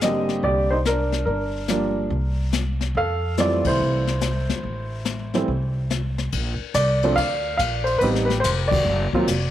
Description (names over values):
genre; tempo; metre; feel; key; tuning
jazz piano trio; 142 BPM; 4/4; swing 65% on 8ths; F major, Bb major from 6.3 s; A4 = 439 Hz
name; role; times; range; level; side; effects
warm upright piano; melody; 0.0-9.5 s; D3 to F5; -22 LUFS; right 1 dB; none
upright bass; bass; 0.0-9.5 s; F1 to C3; -25 LUFS; equal; none
jazz brush drum kit; drums; 0.0-9.4 s; brushed snare drum, crash cymbal, hi-hat, kick drum, ride cymbal, snare drum; -28 LUFS; left 6 dB; none
room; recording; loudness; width
wet spring reverb, RT60 2.1 s; 1960s-style stereo; -20 LUFS; side -12 dB against mid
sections
0.0-6.3 A section; 6.3-9.5 B section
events
band accent 3.6, 8.7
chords
0.0 Abmaj9#11; 1.3 Gm7; 2.1 Bbsus2/C; 3.0 Fmaj7; 6.3 Bb; 8.0 Am7b5; 8.9 D(#9)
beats
0.01 0.43 0.85 | 1.27 1.69 2.11 2.53 | 2.95 3.37 3.79 4.22 | 4.64 5.06 5.48 5.90 | 6.33 6.75 7.17 7.59 | 8.02 8.44 8.86 9.28